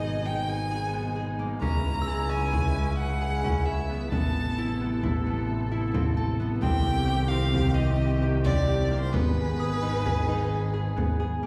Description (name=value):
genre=contemporary instrumental, chamber music in an uneven meter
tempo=263 BPM (eighths)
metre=11/8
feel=straight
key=unclear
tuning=A4 = 440 Hz
part: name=rich violin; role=melody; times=0.0-11.2 s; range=Cb5 to Bb5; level=-35 LUFS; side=equal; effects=none
part: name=muted chamber string section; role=sustained chords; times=0.0-11.5 s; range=Cb3 to A4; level=-37 LUFS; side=equal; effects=none
part: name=concert harp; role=arpeggios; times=0.0-11.5 s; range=Bb3 to A4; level=-34 LUFS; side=equal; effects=none
part: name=clear double bass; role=bass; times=0.0-11.5 s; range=Ab1 to Db2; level=-30 LUFS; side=equal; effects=none
part: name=frame drum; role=percussion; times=1.6-11.3 s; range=none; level=-33 LUFS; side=equal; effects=none
part: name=glockenspiel with brass mallets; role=texture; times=2.0-2.7, 9.6-10.2 s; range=Eb6 to Fb6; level=-42 LUFS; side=equal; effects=none
room=wet recital hall reverb, RT60 1.7 s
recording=recorded in a church or concert hall, vinyl crackle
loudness=-27 LUFS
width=mono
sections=0.0-11.5 A section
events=none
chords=0.0 Abm; 1.6 Dbm; 4.1 Amadd9; 6.6 Cm; 9.1 Abm